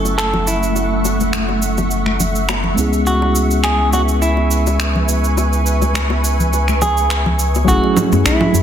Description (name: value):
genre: sunset chillout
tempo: 104 BPM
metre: 4/4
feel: swing 54% on 16ths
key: F# minor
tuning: A4 = 438 Hz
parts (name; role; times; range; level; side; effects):
- semi-hollow electric guitar; melody; 0.0-8.6 s; E4 to A4; -20 LUFS; right 1 dB; tape echo
- mellow tine electric piano; accompaniment; 0.0-8.6 s; F#3 to G#5; -21 LUFS; equal; auto-pan, low-pass filter, digital delay
- shimmering ambient pad; sustained chords; 0.0-8.6 s; A3 to C#6; -22 LUFS; right 1 dB; chorus, built-in reverb
- round analog bass; bass; 0.0-8.6 s; F#1 to F#2; -18 LUFS; equal; tube saturation
- electronic cabasa, finger snaps and congas; drums; 0.1-8.6 s; none; -21 LUFS; right 2 dB; overdrive, soft clipping on snare
- bongos and congas; percussion; 0.1-8.6 s; none; -25 LUFS; left 4 dB; none
- electronic kick drum; drums; 7.7-8.4 s; none; -19 LUFS; equal; none
room: moderate recital hall reverb, RT60 1.4 s, digital ambience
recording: dense, heavily limited modern master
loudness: -13 LUFS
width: side -9 dB against mid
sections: 0.0-7.7 A section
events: filter sweep on tine electric piano 0.0-7.7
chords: 0.0 F#m7; 2.8 C#m7; 7.7 F#m7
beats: 0.18 | 0.76 1.33 1.91 2.49 | 3.06 3.64 4.22 4.79 | 5.37 5.95 6.52 7.10 | 7.68 8.26